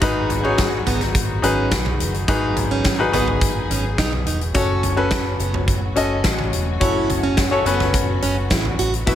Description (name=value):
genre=piano-driven pop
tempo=106 BPM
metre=4/4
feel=straight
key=unclear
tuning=A4 = 439 Hz
part: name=bright concert grand piano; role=accompaniment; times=0.0-9.2 s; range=G#2 to E5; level=-22 LUFS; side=left 3 dB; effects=none
part: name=warm studio string section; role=sustained chords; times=0.0-9.2 s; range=A2 to G#4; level=-30 LUFS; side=left 2 dB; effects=none
part: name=picked plugged-in steel-string acoustic guitar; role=riff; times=0.0-9.2 s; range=B3 to F#4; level=-26 LUFS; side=right 5 dB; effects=none
part: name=vintage muted fingered electric bass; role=bass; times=0.0-9.2 s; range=E1 to B1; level=-24 LUFS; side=equal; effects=none
part: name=huge arena drum kit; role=drums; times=0.0-9.2 s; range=hi-hat, kick drum, snare drum, toms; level=-22 LUFS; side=equal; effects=none
room=light reverb, studio reverb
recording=none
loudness=-17 LUFS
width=side -11 dB against mid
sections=0.0-9.2 A section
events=none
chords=0.0 G#m7; 4.5 F#m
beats=| 0.02 0.58 1.15 1.72 | 2.28 2.85 3.41 3.98 | 4.54 5.11 5.68 6.24 | 6.81 7.38 7.94 8.51 | 9.07